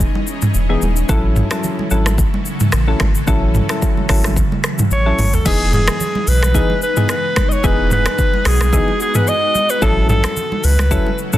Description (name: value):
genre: afrobeats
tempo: 110 BPM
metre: 4/4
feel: swing 55% on 16ths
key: E major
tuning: A4 = 441 Hz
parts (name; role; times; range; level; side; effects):
- ethereal airy pad; sustained chords; 0.0-11.4 s; C#3 to F#4; -24 LUFS; equal; ensemble chorus, built-in reverb
- warm sub bass; bass; 0.0-11.0 s; D#1 to C#2; -16 LUFS; equal; none
- afro-pop drum kit; drums; 0.0-11.4 s; crash cymbal, finger snaps, hi-hat, kick drum, rim click, shaker, toms; -18 LUFS; equal; soft clipping on snare
- congas; percussion; 0.0-11.4 s; none; -27 LUFS; right 2 dB; none
- soft electric-piano-like synth keys; accompaniment; 0.7-11.4 s; E3 to A4; -22 LUFS; left 2 dB; chorus
- breathy alto saxophone; melody; 4.9-11.2 s; G#4 to D#5; -18 LUFS; equal; none
room: digital ambience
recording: dense, heavily limited modern master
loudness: -13 LUFS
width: side -14 dB against mid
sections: 0.0-5.5 A section; 5.5-11.4 B section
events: drum fill 4.9-5.5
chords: 0.0 Emaj7; 1.1 A6; 5.5 Emaj7; 9.8 A6